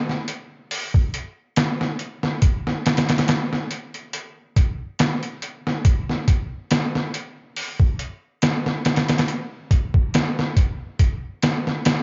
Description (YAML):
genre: trip hop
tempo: 70 BPM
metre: 4/4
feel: swing 55% on 16ths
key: none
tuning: none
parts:
  - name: trip hop sampler-style drum kit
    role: drums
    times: 0.1-12.0 s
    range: hi-hat, kick drum, snare drum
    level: -22 LUFS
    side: equal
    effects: none
room: little or no reverb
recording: nothing above 7.5 kHz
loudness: -22 LUFS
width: mono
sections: 0.0-12.0 A section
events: none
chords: none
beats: 0.71 1.57 | 2.42 3.28 4.14 5.00 | 5.85 6.71 7.57 8.42 | 9.28 10.14 10.99 11.85